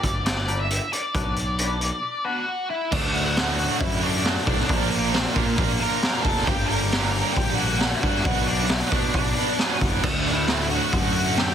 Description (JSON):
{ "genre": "quiet-loud alternative rock", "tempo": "135 BPM", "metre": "4/4", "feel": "straight", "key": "D major", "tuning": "A4 = 438 Hz", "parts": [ { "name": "octave-fuzz lead guitar", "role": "melody", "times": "0.0-11.5 s", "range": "Bb3 to E5", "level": "-28 LUFS", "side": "left 1 dB", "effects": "distortion" }, { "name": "twangy electric guitar", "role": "arpeggios", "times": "0.0-2.7 s", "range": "G3 to B4", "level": "-32 LUFS", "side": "left 3 dB", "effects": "phaser, tape echo" }, { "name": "fuzz picked electric bass", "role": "bass", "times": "0.0-11.5 s", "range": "F1 to B2", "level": "-27 LUFS", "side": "equal", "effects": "overdrive" }, { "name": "raw garage drum kit", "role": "drums", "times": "0.0-11.5 s", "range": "crash cymbal, hi-hat, kick drum, snare drum", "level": "-24 LUFS", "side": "equal", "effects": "none" }, { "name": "cranked stack guitar", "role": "riff", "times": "2.9-11.5 s", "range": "D2 to B4", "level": "-28 LUFS", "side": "right 14 dB", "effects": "overdrive, tremolo" }, { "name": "thick fuzz guitar", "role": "riff", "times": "2.9-11.5 s", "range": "D2 to B4", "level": "-30 LUFS", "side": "left 12 dB", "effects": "distortion" }, { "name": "sludgy distorted guitar", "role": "riff", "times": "10.0-11.5 s", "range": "D2 to D3", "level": "-30 LUFS", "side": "equal", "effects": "none" } ], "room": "light reverb, small room ambience", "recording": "dense, heavily limited modern master", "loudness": "-20 LUFS", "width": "side -8 dB against mid", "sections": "0.0-2.9 A section; 2.9-11.5 B section", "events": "half time 0.0-2.9", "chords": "0.0 Gm; 1.1 Bm; 2.9 D; 4.7 Bb; 6.5 Gm; 8.3 Bm; 10.0 D" }